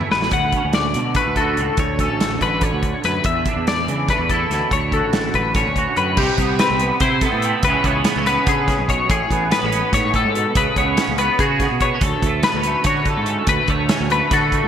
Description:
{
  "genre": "math rock and midwest emo",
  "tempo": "287 BPM (eighths)",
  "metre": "7/8",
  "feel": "straight",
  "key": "D lydian",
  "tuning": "A4 = 442 Hz",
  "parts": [
    { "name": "twangy electric guitar", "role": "accompaniment", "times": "0.0-14.7 s", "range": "D2 to F#4", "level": "-22 LUFS", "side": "right 7 dB", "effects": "ensemble chorus" },
    { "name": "twelve-string electric guitar", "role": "arpeggios", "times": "0.0-14.7 s", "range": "G4 to F#5", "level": "-20 LUFS", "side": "left 5 dB", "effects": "analog chorus, digital delay" },
    { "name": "modern studio drum kit", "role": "drums", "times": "0.0-14.6 s", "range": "crash cymbal, hi-hat, kick drum, snare drum, toms", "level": "-22 LUFS", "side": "right 1 dB", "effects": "gated reverb" },
    { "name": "fuzz fingered electric bass", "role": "bass", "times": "0.1-14.7 s", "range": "A1 to D3", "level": "-24 LUFS", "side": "equal", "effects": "overdrive" }
  ],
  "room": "wet lush hall reverb, RT60 2.1 s",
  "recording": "bright 1980s-style digital production",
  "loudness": "-16 LUFS",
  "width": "side -8 dB against mid",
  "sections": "0.0-6.2 A section; 6.2-14.7 B section",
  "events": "drum fill 0.0-0.3",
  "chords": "0.3 Dmaj7; 3.3 E7sus4; 4.7 Dmaj9; 6.2 Cmaj7; 7.6 C#m7; 9.1 Amaj9; 10.6 C#5; 12.0 Bm9/D",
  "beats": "0.12 | 0.33 0.54 0.75 0.96 1.17 1.38 1.58 | 1.79 2.00 2.21 2.42 2.63 2.84 3.05 | 3.26 3.47 3.68 3.89 4.09 4.30 4.51 | 4.72 4.93 5.14 5.35 5.56 5.77 5.98 | 6.19 6.39 6.60 6.81 7.02 7.23 7.44 | 7.65 7.86 8.06 8.27 8.48 8.69 8.90 | 9.11 9.31 9.52 9.73 9.94 10.15 10.36 | 10.57 10.78 10.98 11.19 11.40 11.61 11.82 | 12.03 12.23 12.44 12.65 12.86 13.07 13.28 | 13.49 13.70 13.90 14.11 14.32 14.53"
}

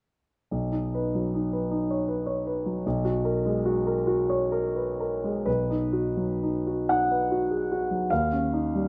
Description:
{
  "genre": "classical, impressionist solo piano",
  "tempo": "40-54 BPM (dotted quarters)",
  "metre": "6/8",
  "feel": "rubato",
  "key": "B major",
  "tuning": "A4 = 437 Hz",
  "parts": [
    { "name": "clear concert grand piano", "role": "solo", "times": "0.5-8.9 s", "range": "B1 to F#5", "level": "-27 LUFS", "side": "equal", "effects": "none" }
  ],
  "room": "moderate recital hall reverb, RT60 1.5 s",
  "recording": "none",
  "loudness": "-27 LUFS",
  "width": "mono",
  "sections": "0.5-5.5 A section; 5.5-8.9 B section",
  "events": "none",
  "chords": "0.5 Badd9; 2.8 G#m11/B; 5.5 B; 8.1 D#7",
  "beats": "| 0.50 1.71 | 2.85 4.07 | 5.46 6.88 | 8.10"
}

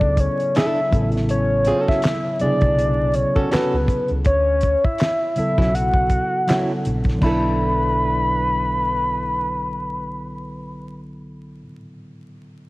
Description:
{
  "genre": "R&B, neo-soul",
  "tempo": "81 BPM",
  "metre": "4/4",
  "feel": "swing 57% on 16ths",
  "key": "B minor",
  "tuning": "A4 = 441 Hz",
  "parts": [
    { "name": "soft octave-layered synth lead", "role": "melody", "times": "0.0-10.9 s", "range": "B4 to B5", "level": "-21 LUFS", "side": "equal", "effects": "chorus, cassette tape" },
    { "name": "tine electric piano", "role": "accompaniment", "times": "0.0-12.7 s", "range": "C3 to A4", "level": "-25 LUFS", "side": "equal", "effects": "cassette tape" },
    { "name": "hollow-body short-scale fingered electric bass", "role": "bass", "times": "0.0-11.6 s", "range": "A1 to D2", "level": "-24 LUFS", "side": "equal", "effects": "none" },
    { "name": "damped 70s drum kit", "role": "drums", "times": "0.0-7.4 s", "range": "crash cymbal, handclaps, hi-hat, kick drum, snare drum", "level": "-22 LUFS", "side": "equal", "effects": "cassette tape" },
    { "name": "flamenco guitar", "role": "second line", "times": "0.6-11.7 s", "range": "F#3 to A4", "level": "-26 LUFS", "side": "right 2 dB", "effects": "cassette tape" }
  ],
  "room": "light reverb, small room ambience",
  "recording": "home recording on cassette, vinyl crackle",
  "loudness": "-17 LUFS",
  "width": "side -20 dB against mid",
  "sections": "0.0-7.2 A section; 7.2-10.2 B section",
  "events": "none",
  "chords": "0.0 Bm11; 0.9 A6; 4.3 Dmaj9; 7.2 Bm7",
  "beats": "0.55 | 1.29 2.03 2.77 3.51 | 4.25 4.99 5.73 6.47 | 7.22 7.96 8.70 9.44"
}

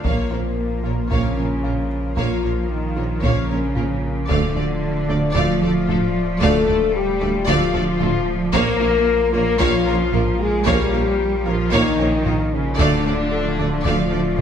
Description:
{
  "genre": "cinematic, hybrid orchestral and electronic film score",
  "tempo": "113 BPM",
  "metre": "4/4",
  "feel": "straight",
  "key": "unclear",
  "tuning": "A4 = 440 Hz",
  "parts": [
    { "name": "warm symphonic violin section", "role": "second line", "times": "0.0-14.4 s", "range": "F4 to D5", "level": "-28 LUFS", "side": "left 2 dB", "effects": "none" },
    { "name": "rich symphonic viola section", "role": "accompaniment", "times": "0.0-14.4 s", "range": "A3 to Bb3", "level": "-29 LUFS", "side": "right 2 dB", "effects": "none" },
    { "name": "chorused pulse-width pad", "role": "sustained chords", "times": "0.0-14.4 s", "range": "F3 to D5", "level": "-29 LUFS", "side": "equal", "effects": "none" },
    { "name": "mellow French horn section", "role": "sustained chords", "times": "0.0-14.4 s", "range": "Bb3 to Bb4", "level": "-23 LUFS", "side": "left 6 dB", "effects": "none" },
    { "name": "tight sequenced synth", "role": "arpeggios", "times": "0.0-14.4 s", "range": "D3 to F4", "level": "-31 LUFS", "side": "right 1 dB", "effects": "none" },
    { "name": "rich symphonic cello section", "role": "bass", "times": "0.0-14.4 s", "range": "Bb2 to Bb3", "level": "-25 LUFS", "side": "right 2 dB", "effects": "none" },
    { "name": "saturated sub bass", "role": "bass", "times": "0.0-14.4 s", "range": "D1 to Bb1", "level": "-27 LUFS", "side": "equal", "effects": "none" },
    { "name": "warm tuba", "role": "bass", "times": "0.0-14.4 s", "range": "Bb1 to D2", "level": "-28 LUFS", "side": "right 4 dB", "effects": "none" },
    { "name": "taiko ensemble", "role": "drums", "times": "0.0-14.4 s", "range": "none", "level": "-25 LUFS", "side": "right 1 dB", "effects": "none" },
    { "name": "felt-muted upright piano", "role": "texture", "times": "0.0-14.4 s", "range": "C4 to D5", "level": "-35 LUFS", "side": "left 3 dB", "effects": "none" },
    { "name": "rich symphonic violin section", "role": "melody", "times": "0.1-14.4 s", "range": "A4 to F5", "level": "-30 LUFS", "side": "left 2 dB", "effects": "none" },
    { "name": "warm symphonic double bass section", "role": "bass", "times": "0.1-14.4 s", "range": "Bb1 to D2", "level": "-27 LUFS", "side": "right 4 dB", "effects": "none" }
  ],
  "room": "moderate scoring stage reverb, RT60 1.5 s",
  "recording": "none",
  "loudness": "-17 LUFS",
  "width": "side -8 dB against mid",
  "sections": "0.1-14.4 A section",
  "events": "none",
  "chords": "0.1 Bbm; 4.3 Dm; 8.5 Bbm; 12.8 Dm",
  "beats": "| 0.05 0.58 1.11 1.64 | 2.17 2.71 3.24 3.77 | 4.30 4.83 5.36 5.89 | 6.42 6.95 7.48 8.01 | 8.54 9.08 9.61 10.14 | 10.67 11.20 11.73 12.26 | 12.79 13.32 13.86 14.39"
}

